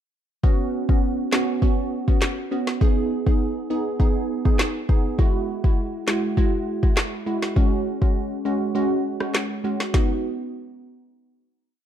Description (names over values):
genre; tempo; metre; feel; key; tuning
dancehall; 101 BPM; 4/4; straight; B major; A4 = 444 Hz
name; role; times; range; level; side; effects
glassy wavetable pluck; accompaniment; 0.4-10.2 s; G#3 to G#4; -24 LUFS; right 2 dB; chorus
afro-pop drum kit; drums; 0.4-10.1 s; handclaps, kick drum, rim click, snare drum; -20 LUFS; left 1 dB; overdrive
room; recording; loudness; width
little or no reverb; dark, warm production; -20 LUFS; side -10 dB against mid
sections
0.4-9.9 verse; 9.9-11.9 final chord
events
kick muted 8.8-9.9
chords
0.4 Bsus2; 2.8 G#m; 5.2 Eadd9; 7.6 F#sus2; 9.9 B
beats
| 0.43 1.03 1.62 2.22 | 2.81 3.41 4.00 4.59 | 5.19 5.78 6.38 6.97 | 7.56 8.16 8.75 9.35 | 9.94